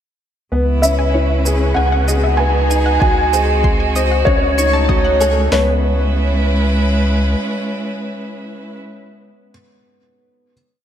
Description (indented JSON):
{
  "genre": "piano and strings electronica",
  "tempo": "96 BPM",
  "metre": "4/4",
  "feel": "straight",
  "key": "C# minor",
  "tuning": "A4 = 439 Hz",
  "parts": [
    { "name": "rich string quartet", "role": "sustained chords", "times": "0.5-8.8 s", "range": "C#3 to B4", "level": "-21 LUFS", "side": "right 1 dB", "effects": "none" },
    { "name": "analog pluck", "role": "arpeggios", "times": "0.5-5.8 s", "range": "B4 to C#6", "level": "-24 LUFS", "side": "left 2 dB", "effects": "chorus, sidechain pumping, diffuse ambient delay" },
    { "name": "dark upright piano", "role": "riff", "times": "0.5-10.5 s", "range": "B3 to B#4", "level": "-21 LUFS", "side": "left 1 dB", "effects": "diffuse ambient delay" },
    { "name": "warm sub bass", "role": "bass", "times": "0.5-7.4 s", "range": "C#2", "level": "-17 LUFS", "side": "equal", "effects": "tube saturation, sidechain pumping" },
    { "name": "felt-muted upright piano", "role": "melody", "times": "0.8-9.5 s", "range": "C#5 to G#5", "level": "-19 LUFS", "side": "equal", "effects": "lush chorus, diffuse ambient delay" },
    { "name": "shaker", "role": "drums", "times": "0.8-5.3 s", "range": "none", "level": "-28 LUFS", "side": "right 4 dB", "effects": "overdrive" },
    { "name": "deep house drum kit", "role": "drums", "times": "3.0-5.7 s", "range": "hi-hat, kick drum, snare drum", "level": "-17 LUFS", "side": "equal", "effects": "overdrive" }
  ],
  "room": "wet lush hall reverb, RT60 1.9 s, digital ambience",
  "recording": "dreamy mix soaked in reverb",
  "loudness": "-13 LUFS",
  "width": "side -9 dB against mid",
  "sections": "0.5-5.5 build; 5.5-8.0 final chord",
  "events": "build-up 0.5-5.5; filter sweep on synth arpeggio sound 0.5-5.5",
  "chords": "0.5 C#m7; 1.8 Emaj9/C#; 3.0 G#7/C#; 4.3 D#m7b5/C#; 5.5 C#m7"
}